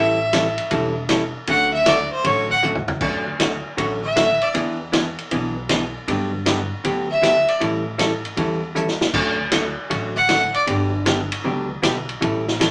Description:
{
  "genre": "country, western swing",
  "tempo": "156 BPM",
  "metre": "4/4",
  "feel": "swing 66% on 8ths",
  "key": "D major",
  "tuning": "A4 = 440 Hz",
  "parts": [
    { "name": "clear fiddle", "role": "melody", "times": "0.0-4.6, 7.1-7.6, 10.2-10.7 s", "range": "C5 to F#5", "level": "-20 LUFS", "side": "equal", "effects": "none" },
    { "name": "vintage hollow-body jazz guitar", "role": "accompaniment", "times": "0.0-12.7 s", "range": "D3 to A4", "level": "-26 LUFS", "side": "equal", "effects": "none" },
    { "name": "upright bass", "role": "bass", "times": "0.0-12.7 s", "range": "E1 to A2", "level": "-32 LUFS", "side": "equal", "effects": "none" },
    { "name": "vintage drum kit", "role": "drums", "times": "0.3-12.7 s", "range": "crash cymbal, hi-hat, kick drum, ride cymbal, snare drum, toms", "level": "-26 LUFS", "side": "equal", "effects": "none" }
  ],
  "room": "wet small room reverb, RT60 0.5 s",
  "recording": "none",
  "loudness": "-20 LUFS",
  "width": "mono",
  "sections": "0.0-3.0 A section; 3.0-12.7 A section",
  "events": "fiddle solo 0.0-3.0, 3.0-12.7; drum fill 2.6-3.0, 8.8-9.1",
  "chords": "0.0 A7; 1.5 Dmaj7; 4.5 E7; 6.1 Gmaj7; 7.6 A7; 9.1 Dmaj7; 10.7 Gmaj7",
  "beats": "0.33 0.71 1.10 | 1.48 1.86 2.25 2.63 | 3.01 3.40 3.78 4.16 | 4.54 4.93 5.31 5.69 | 6.08 6.46 6.84 7.23 | 7.61 7.99 8.38 8.76 | 9.14 9.53 9.91 10.30 | 10.68 11.06 11.45 11.83 | 12.22 12.60"
}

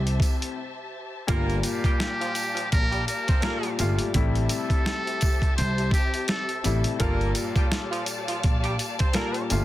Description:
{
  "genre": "hip hop, boom-bap hip-hop",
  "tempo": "84 BPM",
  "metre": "4/4",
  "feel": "swing 57% on 16ths",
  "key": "G dorian",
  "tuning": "A4 = 438 Hz",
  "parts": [
    { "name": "clear upright piano", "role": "accompaniment", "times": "0.0-9.6 s", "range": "Bb2 to A4", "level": "-31 LUFS", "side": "left 4 dB", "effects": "cassette tape, high-pass filter, low-pass filter" },
    { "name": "warm studio string section", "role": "sustained chords", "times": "0.0-9.6 s", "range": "G4 to A5", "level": "-35 LUFS", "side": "left 1 dB", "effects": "high-pass filter, low-pass filter" },
    { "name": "upright bass", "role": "bass", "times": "0.0-9.6 s", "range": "G1 to C2", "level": "-26 LUFS", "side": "equal", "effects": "none" },
    { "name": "boom bap sampler-style drum kit", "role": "drums", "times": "0.1-9.6 s", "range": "hi-hat, kick drum, snare drum", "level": "-25 LUFS", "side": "equal", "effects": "none" },
    { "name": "tambourine", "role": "percussion", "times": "0.2-9.6 s", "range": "none", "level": "-38 LUFS", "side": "right 4 dB", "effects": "none" },
    { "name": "bright saxophone section", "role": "stabs", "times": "1.3-9.4 s", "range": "F3 to C5", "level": "-33 LUFS", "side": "right 2 dB", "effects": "high-pass filter, low-pass filter, tape echo" },
    { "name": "trumpet with metal mute", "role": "melody", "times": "1.6-6.6 s", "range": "G4 to C5", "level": "-30 LUFS", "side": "equal", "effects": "high-pass filter, low-pass filter, tape echo" }
  ],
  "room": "little or no reverb",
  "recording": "dense, heavily limited modern master",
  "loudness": "-22 LUFS",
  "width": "side -15 dB against mid",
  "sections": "0.0-9.6 A section",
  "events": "break 0.6-1.3",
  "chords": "0.0 Am7; 1.3 Gm9; 4.1 Am7; 7.0 Gm9",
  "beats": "0.57 | 1.29 2.00 2.72 3.43 | 4.15 4.86 5.57 6.29 | 7.00 7.72 8.43 9.15"
}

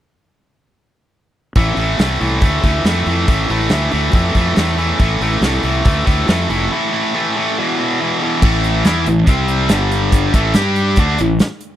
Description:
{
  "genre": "blues rock power trio and southern rock",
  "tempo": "140 BPM",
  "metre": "4/4",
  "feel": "straight",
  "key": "A minor",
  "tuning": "A4 = 440 Hz",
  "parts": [
    { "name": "tight distorted guitar", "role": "riff", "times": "1.6-11.4 s", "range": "E2 to G4", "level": "-16 LUFS", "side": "equal", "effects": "distortion" },
    { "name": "fuzz fingered electric bass", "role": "bass", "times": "1.6-11.4 s", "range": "F1 to G2", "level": "-18 LUFS", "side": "equal", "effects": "overdrive" },
    { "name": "big rock drum kit", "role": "drums", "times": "1.6-11.7 s", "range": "crash cymbal, hi-hat, kick drum, snare drum", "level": "-16 LUFS", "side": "equal", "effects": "none" }
  ],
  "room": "little or no reverb",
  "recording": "dry, close 1970s-style studio recording",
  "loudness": "-13 LUFS",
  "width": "side -12 dB against mid",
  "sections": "1.6-8.4 A section; 8.4-11.8 B section",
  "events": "break 6.7-8.4",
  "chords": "1.6 A5; 7.6 E5; 8.4 A5; 9.3 C5; 9.7 G5; 10.3 A5; 10.6 G5; 11.0 A5",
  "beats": "| 1.58 2.00 2.44 2.86 | 3.29 3.72 4.15 4.58 | 5.01 5.44 5.87 6.29 | 6.72 7.15 7.58 8.00 | 8.43 8.86 9.28 9.71 | 10.13 10.56 10.99 11.41"
}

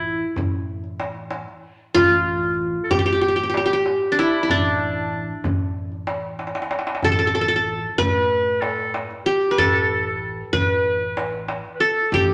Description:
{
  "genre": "Turkish makam ensemble",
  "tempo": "94 BPM",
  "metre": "4/4",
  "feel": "straight",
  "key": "A makam ussak",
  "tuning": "A4 = 440 Hz",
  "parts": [
    { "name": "qanun", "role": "melody", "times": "0.0-12.3 s", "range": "D4 to B4-30c", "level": "-22 LUFS", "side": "equal", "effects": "none" },
    { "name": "bright clarinet", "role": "second line", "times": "0.0-12.3 s", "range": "D4 to B4-28c", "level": "-28 LUFS", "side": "equal", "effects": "none" },
    { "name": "upright bass", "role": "bass", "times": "0.0-12.3 s", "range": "A1 to A2", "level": "-34 LUFS", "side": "equal", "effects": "none" },
    { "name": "darbuka", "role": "percussion", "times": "0.4-12.3 s", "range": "none", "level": "-29 LUFS", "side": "equal", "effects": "none" }
  ],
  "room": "wet large studio reverb, RT60 1.4 s",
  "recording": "none",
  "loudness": "-21 LUFS",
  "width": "mono",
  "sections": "0.0-12.3 A section",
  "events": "drum fill 6.4-7.0",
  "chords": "none",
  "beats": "0.06 0.69 1.32 | 1.96 2.59 3.23 3.86 | 4.50 5.13 5.77 6.40 | 7.04 7.67 8.31 8.95 | 9.58 10.22 10.85 11.49 | 12.13"
}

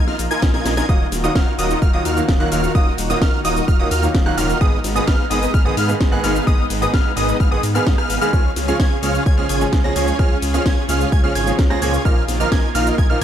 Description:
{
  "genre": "EDM, festival progressive house",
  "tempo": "129 BPM",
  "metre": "4/4",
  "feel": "straight",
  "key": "Eb minor",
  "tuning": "A4 = 440 Hz",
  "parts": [
    { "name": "lush unison pad", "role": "sustained chords", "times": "0.0-13.2 s", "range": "Db3 to Ab4", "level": "-26 LUFS", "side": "left 1 dB", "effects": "chorus, sidechain pumping" },
    { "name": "plucky unison lead", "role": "arpeggios", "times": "0.0-13.2 s", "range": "Eb6 to Bb6", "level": "-25 LUFS", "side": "equal", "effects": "phaser, sidechain pumping, dub echo" },
    { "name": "dense compressed supersaw", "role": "riff", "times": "0.0-13.2 s", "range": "Cb4 to Bb5", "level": "-24 LUFS", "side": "right 1 dB", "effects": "sidechain pumping, dub echo" },
    { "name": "wide detuned saw bass", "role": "bass", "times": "0.0-13.2 s", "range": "Eb1 to Ab2", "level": "-23 LUFS", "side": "equal", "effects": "chorus, sidechain pumping" },
    { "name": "house drum kit", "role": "drums", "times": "0.1-13.2 s", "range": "hi-hat, rim click, shaker, snare drum", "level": "-25 LUFS", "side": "equal", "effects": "none" },
    { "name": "electronic kick drum", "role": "drums", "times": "0.4-13.1 s", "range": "none", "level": "-16 LUFS", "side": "equal", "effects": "none" },
    { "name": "bright grand piano", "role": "accompaniment", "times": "0.9-13.2 s", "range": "Ab2 to Ab4", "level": "-24 LUFS", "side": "right 3 dB", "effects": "sidechain pumping, dub echo" }
  ],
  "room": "light reverb, digital ambience",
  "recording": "dark, warm production",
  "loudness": "-15 LUFS",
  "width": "side -10 dB against mid",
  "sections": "0.0-13.2 A section",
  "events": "drum fill 0.5-0.9",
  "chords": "0.0 Bbsus4; 0.9 Ebmadd9; 4.6 Abm; 8.3 Db; 12.1 Bbsus4",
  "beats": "0.42 | 0.89 1.35 1.82 2.29 | 2.75 3.21 3.68 4.15 | 4.61 5.08 5.54 6.01 | 6.47 6.94 7.40 7.87 | 8.33 8.80 9.26 9.73 | 10.19 10.66 11.12 11.59 | 12.05 12.52 12.98"
}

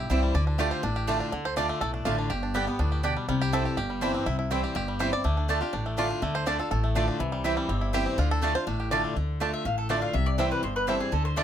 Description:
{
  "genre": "bluegrass",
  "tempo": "245 BPM",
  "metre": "4/4",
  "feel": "straight",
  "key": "D dorian",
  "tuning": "A4 = 440 Hz",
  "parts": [
    { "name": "bluegrass banjo", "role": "melody", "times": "0.0-11.4 s", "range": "D3 to D5", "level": "-31 LUFS", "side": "right 1 dB", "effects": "none" },
    { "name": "picked acoustic archtop guitar", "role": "accompaniment", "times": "0.0-11.4 s", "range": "G2 to G4", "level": "-30 LUFS", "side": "left 2 dB", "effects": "none" },
    { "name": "upright bass", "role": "bass", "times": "0.0-11.4 s", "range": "G1 to D2", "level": "-29 LUFS", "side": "equal", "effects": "none" },
    { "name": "mandolin", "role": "stabs", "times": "0.1-11.4 s", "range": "A3 to A5", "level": "-29 LUFS", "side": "right 5 dB", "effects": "none" },
    { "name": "mandolin", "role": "melody", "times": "9.5-11.4 s", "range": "G#4 to F5", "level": "-30 LUFS", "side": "equal", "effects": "none" }
  ],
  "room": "little or no reverb",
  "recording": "close, detailed microphones",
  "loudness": "-25 LUFS",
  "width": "side -10 dB against mid",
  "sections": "0.0-1.3 A section; 1.3-9.2 A section; 9.2-11.4 B section",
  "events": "five-string banjo solo 0.0-9.2",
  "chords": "0.3 Dm; 2.3 G; 3.3 C; 5.2 Dm; 7.2 C; 8.2 Dm; 10.1 C",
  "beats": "0.10 | 0.35 0.59 0.84 1.08 | 1.32 1.57 1.81 2.06 | 2.31 2.55 2.79 3.04 | 3.29 3.53 3.77 4.02 | 4.26 4.51 4.75 5.00 | 5.24 5.49 5.73 5.98 | 6.22 6.47 6.71 6.96 | 7.20 7.45 7.69 7.94 | 8.18 8.43 8.67 8.92 | 9.16 9.41 9.65 9.90 | 10.14 10.39 10.63 10.88 | 11.12 11.37"
}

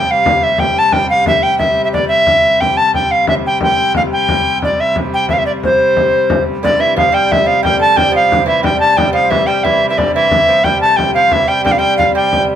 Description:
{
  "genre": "medieval dance",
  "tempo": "119 BPM (dotted quarters)",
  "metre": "6/8",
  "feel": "straight",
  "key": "C major",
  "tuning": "A4 = 440 Hz",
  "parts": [
    { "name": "bright reedy tenor recorder", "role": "melody", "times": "0.0-12.4 s", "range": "C5 to A5", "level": "-12 LUFS", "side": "equal", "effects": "none" },
    { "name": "warm hurdy-gurdy", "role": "drone", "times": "0.0-12.6 s", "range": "C3 to G3", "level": "-21 LUFS", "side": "left 2 dB", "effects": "none" },
    { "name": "frame drum", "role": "percussion", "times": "0.3-12.5 s", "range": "none", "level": "-20 LUFS", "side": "left 2 dB", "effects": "none" },
    { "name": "lute", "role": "second line", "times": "6.6-12.6 s", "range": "D3 to A3", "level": "-18 LUFS", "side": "right 4 dB", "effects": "none" }
  ],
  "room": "moderate large studio reverb, RT60 1.0 s",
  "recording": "band playing live in one room",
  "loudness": "-10 LUFS",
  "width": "side -9 dB against mid",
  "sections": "0.0-6.6 A section; 6.6-12.6 A section",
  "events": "none",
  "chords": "none",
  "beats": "0.08 | 0.59 1.09 | 1.59 2.10 | 2.60 3.11 | 3.61 4.11 | 4.62 5.12 | 5.62 6.13 | 6.63 7.13 | 7.63 8.14 | 8.64 9.14 | 9.65 10.15 | 10.65 11.15 | 11.66 12.16"
}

